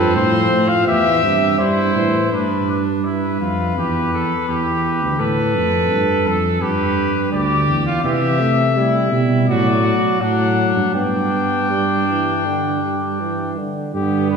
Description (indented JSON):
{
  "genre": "classical, imitative canzona for brass ensemble",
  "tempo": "83 BPM",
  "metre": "4/4",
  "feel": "straight",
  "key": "G major from 8.0 s",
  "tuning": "A4 = 440 Hz",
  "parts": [
    { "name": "warm cornet", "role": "melody", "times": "0.0-14.4 s", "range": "G4 to G5", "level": "-21 LUFS", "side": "left 4 dB", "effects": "none" },
    { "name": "bright trumpet", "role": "second line", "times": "0.0-14.4 s", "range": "B3 to B4", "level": "-23 LUFS", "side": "right 2 dB", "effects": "none" },
    { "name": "warm euphonium", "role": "accompaniment", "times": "0.0-2.3, 8.0-14.4 s", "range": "C3 to B3", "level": "-22 LUFS", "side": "right 2 dB", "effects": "none" },
    { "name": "dark tuba", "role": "bass", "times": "0.0-14.4 s", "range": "D2 to C3", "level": "-19 LUFS", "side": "right 2 dB", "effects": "none" }
  ],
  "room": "wet concert hall reverb, RT60 1.9 s",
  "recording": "heard from further back in the room",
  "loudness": "-15 LUFS",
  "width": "side -5 dB against mid",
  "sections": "0.0-2.3 A section; 2.3-13.9 B section",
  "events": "none",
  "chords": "0.0 F; 0.9 C/E; 2.3 G; 3.8 G69; 5.2 F; 6.6 G; 8.0 C; 9.5 D/A; 10.9 G"
}